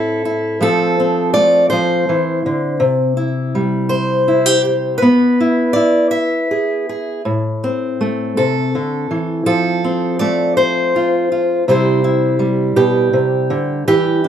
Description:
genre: folk, solo fingerstyle acoustic guitar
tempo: 54 BPM (dotted quarters)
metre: 6/8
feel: straight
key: unclear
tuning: A4 = 438 Hz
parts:
  - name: fingerpicked steel-string acoustic guitar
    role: solo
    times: 0.0-14.3 s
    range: A2 to E5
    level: -13 LUFS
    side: equal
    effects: none
room: moderate large studio reverb, RT60 0.8 s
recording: band playing live in one room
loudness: -13 LUFS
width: side -9 dB against mid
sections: 0.0-14.3 A section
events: none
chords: 0.0 Am; 0.6 F; 2.8 C; 5.0 E/B; 7.2 Am; 9.5 F; 11.7 C

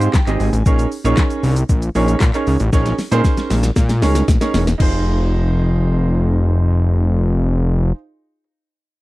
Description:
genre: dance-pop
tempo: 116 BPM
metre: 4/4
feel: straight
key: F minor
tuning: A4 = 438 Hz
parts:
  - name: warm baby grand piano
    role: accompaniment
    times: 0.0-7.9 s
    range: C4 to Ab5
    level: -22 LUFS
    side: right 3 dB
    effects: sidechain pumping
  - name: fat analog bass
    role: bass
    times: 0.0-7.9 s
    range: E1 to Bb2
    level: -16 LUFS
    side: left 1 dB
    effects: sidechain pumping
  - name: smooth R&B drum kit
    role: drums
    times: 0.0-4.9 s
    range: crash cymbal, handclaps, hi-hat, kick drum, shaker, snare drum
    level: -17 LUFS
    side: left 1 dB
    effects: none
room: little or no reverb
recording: dry, close 1970s-style studio recording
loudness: -14 LUFS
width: side -18 dB against mid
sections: 0.0-4.8 A section; 4.8-8.9 B section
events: grand piano fill 0.0-0.7; drum fill 2.7-4.8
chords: 0.0 Abmaj7; 0.7 Eb7sus4; 4.8 Fm7

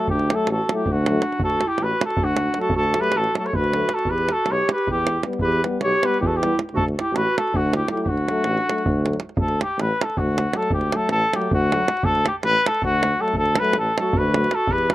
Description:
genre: balkan folk, Balkan brass band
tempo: 316 BPM (eighths)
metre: 7/8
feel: straight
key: D major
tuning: A4 = 440 Hz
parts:
  - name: warm trumpet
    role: melody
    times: 0.0-14.9 s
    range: F#4 to C#5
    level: -22 LUFS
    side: left 1 dB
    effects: none
  - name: dark clarinet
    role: second line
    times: 0.0-9.3, 14.0-14.9 s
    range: D4 to A4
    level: -26 LUFS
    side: right 3 dB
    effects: none
  - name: clear euphonium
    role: accompaniment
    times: 0.0-14.5 s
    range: F#3 to G3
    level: -32 LUFS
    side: right 3 dB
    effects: none
  - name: warm euphonium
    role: accompaniment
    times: 0.0-14.5 s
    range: A3 to B3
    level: -28 LUFS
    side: left 4 dB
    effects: none
  - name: davul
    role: percussion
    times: 0.0-14.9 s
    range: none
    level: -26 LUFS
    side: right 2 dB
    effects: none
  - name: warm tuba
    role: bass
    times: 0.1-14.9 s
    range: A1 to E2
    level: -24 LUFS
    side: equal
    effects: none
room: little or no reverb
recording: recorded outdoors, with no room sound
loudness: -19 LUFS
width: side -15 dB against mid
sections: 0.0-9.4 A section; 9.4-14.9 A section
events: none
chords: 0.0 D; 4.1 Em; 6.7 D

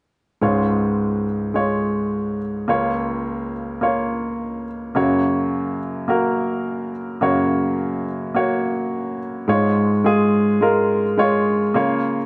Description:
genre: pop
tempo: 106 BPM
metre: 4/4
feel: straight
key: Db major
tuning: A4 = 439 Hz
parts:
  - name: clear baby grand piano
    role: accompaniment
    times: 0.4-12.3 s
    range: Db2 to Db5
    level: -21 LUFS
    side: equal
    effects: none
room: wet studio reverb, RT60 0.8 s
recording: nothing above 10.3 kHz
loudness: -21 LUFS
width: mono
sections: 0.4-9.5 A section; 9.5-12.3 B section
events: none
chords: 0.4 Db; 2.7 Bbm/Db; 5.0 Gb; 9.5 Db; 11.8 Bbm/Db

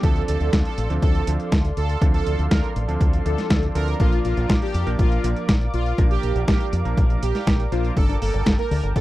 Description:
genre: italo disco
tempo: 121 BPM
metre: 4/4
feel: straight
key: D minor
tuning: A4 = 440 Hz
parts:
  - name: analog synth brass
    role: melody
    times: 0.0-9.0 s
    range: F4 to Bb4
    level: -28 LUFS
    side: right 1 dB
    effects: chorus, tape echo
  - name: lush unison pad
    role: sustained chords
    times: 0.0-9.0 s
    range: A4 to D6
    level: -32 LUFS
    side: equal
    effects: chorus
  - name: warm electric grand piano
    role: stabs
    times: 0.0-7.9 s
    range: F3 to C5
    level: -30 LUFS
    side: right 4 dB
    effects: vintage 12-bit sampler grit
  - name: fingered electric bass with an envelope filter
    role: bass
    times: 0.0-9.0 s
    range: G1 to F2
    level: -23 LUFS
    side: equal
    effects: tube saturation
  - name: dusty soul sampler-style drum kit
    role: drums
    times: 0.0-9.0 s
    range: hi-hat, snare drum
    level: -24 LUFS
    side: equal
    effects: overdrive
  - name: electronic kick drum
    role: drums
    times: 0.0-9.0 s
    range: none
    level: -21 LUFS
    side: equal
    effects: none
  - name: analog pluck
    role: arpeggios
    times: 8.0-9.0 s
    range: D3 to D4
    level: -32 LUFS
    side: left 2 dB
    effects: chorus, phaser, tape echo
room: little or no reverb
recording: dry, close 1970s-style studio recording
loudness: -18 LUFS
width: side -16 dB against mid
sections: 0.0-9.0 A section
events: band accent 0.0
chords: 0.0 Dm7; 4.0 Bb; 8.0 Gmadd9

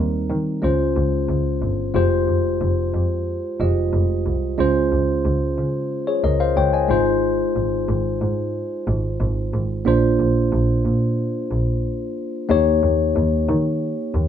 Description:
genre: 1980s-style pop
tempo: 91 BPM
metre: 4/4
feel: straight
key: Eb mixolydian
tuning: A4 = 440 Hz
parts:
  - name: tine electric piano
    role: accompaniment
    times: 0.0-14.3 s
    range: G3 to Ab5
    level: -20 LUFS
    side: moving between left 5 dB and right 6 dB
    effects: auto-pan
  - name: clear double bass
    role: bass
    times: 0.0-14.3 s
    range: F1 to Eb3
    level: -21 LUFS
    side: equal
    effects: none
room: wet studio reverb, RT60 0.6 s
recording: none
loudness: -18 LUFS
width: side -9 dB against mid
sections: 0.0-2.0 A section; 2.0-12.5 B section; 12.5-14.3 C section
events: break 11.8-12.5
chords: 0.0 Cm7/Eb; 0.6 Dbmaj7; 2.0 Fmadd9; 4.6 Dbmaj7; 6.9 Ab6; 9.9 Bbadd9; 12.5 Eb7

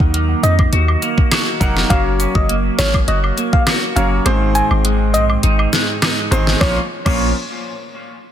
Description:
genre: dancehall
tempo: 102 BPM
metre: 4/4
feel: straight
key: Bb minor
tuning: A4 = 443 Hz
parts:
  - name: clear baby grand piano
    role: accompaniment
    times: 0.0-7.3 s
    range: Eb3 to Gb5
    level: -24 LUFS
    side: equal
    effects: none
  - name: clean electric guitar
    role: arpeggios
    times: 0.0-7.3 s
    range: Ab2 to Gb4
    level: -20 LUFS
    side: right 1 dB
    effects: wide subtle chorus, tape echo
  - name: warm 808-style bass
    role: bass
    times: 0.0-7.3 s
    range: F1 to F2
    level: -17 LUFS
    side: equal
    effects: none
  - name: pop drum kit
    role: drums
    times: 0.0-7.2 s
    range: crash cymbal, hi-hat, kick drum, rim click, snare drum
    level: -17 LUFS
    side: equal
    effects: overdrive
  - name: soft struck synth lead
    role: melody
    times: 0.4-7.3 s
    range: Db5 to Ab5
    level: -23 LUFS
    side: equal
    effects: chorus, tape echo
  - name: cabasa and woodblock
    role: percussion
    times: 0.4-7.3 s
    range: none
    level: -28 LUFS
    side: equal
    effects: none
room: light reverb, digital ambience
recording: dense, heavily limited modern master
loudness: -13 LUFS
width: side -10 dB against mid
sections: 0.0-6.6 A section; 6.6-8.3 B section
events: kick muted 4.3-6.6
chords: 0.0 Ebm; 1.9 Gb; 4.3 Ab; 6.6 Bbm

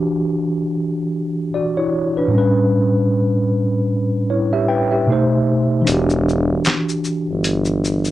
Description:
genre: lo-fi hip hop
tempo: 76 BPM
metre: 4/4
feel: swing 59% on 16ths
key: E dorian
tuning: A4 = 440 Hz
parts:
  - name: mellow tine electric piano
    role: accompaniment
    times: 0.0-8.1 s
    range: A2 to G5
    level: -16 LUFS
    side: equal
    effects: medium stereo tremolo, cassette tape, plate reverb
  - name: warm tuba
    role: bass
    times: 5.9-8.1 s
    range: E1 to G1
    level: -19 LUFS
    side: equal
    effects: none
  - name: dusty soul sampler-style drum kit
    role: drums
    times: 5.9-8.1 s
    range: handclaps, hi-hat, shaker, snare drum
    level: -21 LUFS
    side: equal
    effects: none
room: wet studio reverb, RT60 0.5 s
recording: none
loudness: -16 LUFS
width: side -14 dB against mid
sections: 0.0-5.9 A section; 5.9-8.1 B section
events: kick muted 5.9-8.1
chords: 0.0 Em9; 2.3 A9; 5.1 B7b9; 5.9 Em9

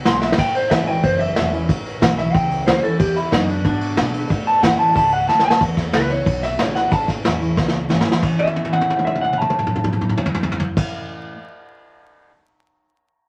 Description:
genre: rockabilly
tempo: 184 BPM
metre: 4/4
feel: straight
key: A major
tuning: A4 = 440 Hz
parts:
  - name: picked steel-string acoustic guitar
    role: accompaniment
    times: 0.0-11.3 s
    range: E2 to E4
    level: -27 LUFS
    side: equal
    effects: none
  - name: upright bass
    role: bass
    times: 0.0-10.8 s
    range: E1 to B2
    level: -31 LUFS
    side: equal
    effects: none
  - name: electric guitar through a small old amp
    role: melody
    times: 0.1-10.8 s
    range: D4 to C6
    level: -21 LUFS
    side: equal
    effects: none
  - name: vintage brush drum kit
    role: drums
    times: 0.1-12.3 s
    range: crash cymbal, kick drum, ride cymbal, snare drum, toms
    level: -22 LUFS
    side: equal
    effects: none
room: moderate studio reverb, RT60 0.7 s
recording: vinyl crackle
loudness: -18 LUFS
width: mono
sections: 0.0-5.6 A section; 5.6-8.2 B section; 8.2-10.9 C section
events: drum fill 0.2, 5.3-5.6, 7.6-8.2, 8.4-10.8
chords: 0.4 A; 3.0 E7; 4.3 A; 5.6 E7; 6.9 A

